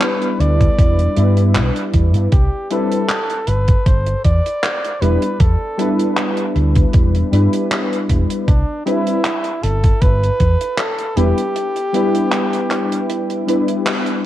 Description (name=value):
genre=vaporwave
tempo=78 BPM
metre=4/4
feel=swing 54% on 16ths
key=unclear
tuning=A4 = 445 Hz
part: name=warm flugelhorn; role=melody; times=0.0-13.9 s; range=D4 to D5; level=-23 LUFS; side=equal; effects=tape echo
part: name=warbly lo-fi synth keys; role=accompaniment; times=0.0-14.3 s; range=G3 to B4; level=-19 LUFS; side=left 1 dB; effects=analog chorus, vintage 12-bit sampler grit
part: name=deep reggae drum kit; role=drums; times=0.0-14.2 s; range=handclaps, hi-hat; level=-23 LUFS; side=equal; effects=gated reverb
part: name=fingered electric bass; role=bass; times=0.4-11.3 s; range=E1 to G2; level=-16 LUFS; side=equal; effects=tube saturation
part: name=electronic kick drum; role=drums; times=0.6-10.6 s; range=none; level=-14 LUFS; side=equal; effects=none
room=light reverb, studio reverb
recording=cassette tape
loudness=-14 LUFS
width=side -13 dB against mid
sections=0.0-14.3 A section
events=band accent 13.9-14.2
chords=0.0 Em7; 2.3 Cmaj9; 5.0 Em7; 8.5 Cmaj9; 11.2 Em7